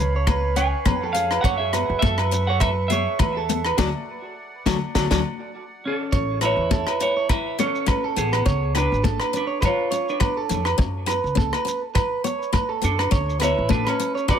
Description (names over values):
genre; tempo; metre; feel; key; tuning
highlife guitar band; 103 BPM; 4/4; swing 55% on 16ths; A major; A4 = 441 Hz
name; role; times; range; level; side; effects
picked steel-string acoustic guitar; accompaniment; 0.0-14.4 s; F#3 to E#4; -30 LUFS; left 10 dB; plate reverb
accordion; sustained chords; 0.0-6.1 s; C#5 to B5; -38 LUFS; right 1 dB; light tremolo tuning, plate reverb
electric guitar at the edge of break-up; arpeggios; 0.0-14.4 s; F#4 to D5; -26 LUFS; right 6 dB; plate reverb, tape echo
upright bass; bass; 0.0-13.8 s; G#1 to F#2; -26 LUFS; equal; none
shekere; percussion; 0.0-14.4 s; none; -28 LUFS; equal; none
tight funk drum kit; drums; 0.3-14.4 s; hi-hat, kick drum, rim click, snare drum; -25 LUFS; equal; none
agogo bells; percussion; 0.3-14.4 s; none; -32 LUFS; left 13 dB; none
congas; percussion; 0.3-14.4 s; none; -30 LUFS; left 11 dB; none
semi-hollow electric guitar; melody; 0.6-14.4 s; B3 to G#5; -25 LUFS; right 1 dB; warbly pitch drift, plate reverb, tape echo
room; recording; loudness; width
moderate small room reverb, RT60 0.5 s; none; -20 LUFS; side -8 dB against mid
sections
0.0-6.1 A section; 6.1-14.4 B section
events
band accent 3.8-6.1; drum fill 4.9-6.1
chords
0.0 C#7; 1.4 F#m7; 3.8 D; 6.1 Aadd9; 8.5 C#7; 10.8 F#m; 13.1 D5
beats
0.27 0.85 | 1.44 2.02 2.61 3.19 | 3.78 4.36 4.95 5.53 | 6.12 6.70 7.29 7.87 | 8.46 9.04 9.62 10.21 | 10.79 11.38 11.96 12.54 | 13.13 13.71 14.29